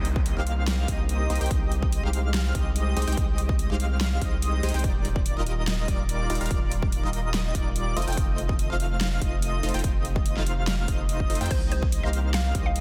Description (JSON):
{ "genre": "future bass", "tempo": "144 BPM", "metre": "4/4", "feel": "half-time", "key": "unclear", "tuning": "A4 = 440 Hz", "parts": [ { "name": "airy breathy pad", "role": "sustained chords", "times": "0.0-12.8 s", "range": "Eb3 to G4", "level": "-43 LUFS", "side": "equal", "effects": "none" }, { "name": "airy dreamy lead", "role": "arpeggios", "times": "0.0-12.8 s", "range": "D5 to G5", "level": "-37 LUFS", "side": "equal", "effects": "chorus, sidechain pumping" }, { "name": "supersaw stab", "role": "riff", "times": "0.0-12.8 s", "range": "G3 to G5", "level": "-36 LUFS", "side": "equal", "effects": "sidechain pumping, digital delay" }, { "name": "saturated sub bass", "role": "bass", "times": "0.0-12.8 s", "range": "Eb1 to F2", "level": "-29 LUFS", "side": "equal", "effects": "sidechain pumping" }, { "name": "big-room dance drum kit", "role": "drums", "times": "0.0-12.8 s", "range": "crash cymbal, hi-hat, snare drum", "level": "-35 LUFS", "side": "equal", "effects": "none" }, { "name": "downlifter", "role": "sound effects", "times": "0.0-1.5 s", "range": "none", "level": "-47 LUFS", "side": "equal", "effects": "none" }, { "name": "electronic kick drum", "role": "drums", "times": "0.2-12.6 s", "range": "none", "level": "-29 LUFS", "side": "equal", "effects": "none" }, { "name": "mallet-like synth pluck", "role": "melody", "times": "11.5-12.8 s", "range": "C5 to F5", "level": "-36 LUFS", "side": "equal", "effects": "chorus, sidechain pumping, delay" } ], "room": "digital ambience", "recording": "dense, heavily limited modern master", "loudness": "-26 LUFS", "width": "mono", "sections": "0.0-12.8 A section", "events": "none", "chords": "0.0 Cm7; 1.5 Abmaj7/C; 4.8 Ebmaj9; 8.0 F7; 11.5 Cm7" }